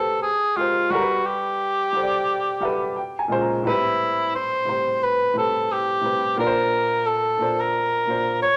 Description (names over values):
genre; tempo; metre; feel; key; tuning
R&B; 88 BPM; 4/4; swing 59% on 16ths; unclear; A4 = 441 Hz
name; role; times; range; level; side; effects
warm cor anglais; melody; 0.0-8.6 s; E4 to Db5; -23 LUFS; equal; none
dark baby grand piano; accompaniment; 0.0-8.4 s; A2 to Bb5; -28 LUFS; equal; none
room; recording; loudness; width
wet club reverb, RT60 0.8 s; none; -22 LUFS; mono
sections
0.0-8.6 A section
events
grand piano fill 2.3-3.6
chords
0.2 G#maj9; 0.9 Gmaj9; 3.0 Bbm9; 3.6 Am9; 6.4 Bbadd9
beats
0.23 | 0.92 1.60 2.28 2.96 | 3.64 4.32 5.00 5.69 | 6.37 7.05 7.73 8.41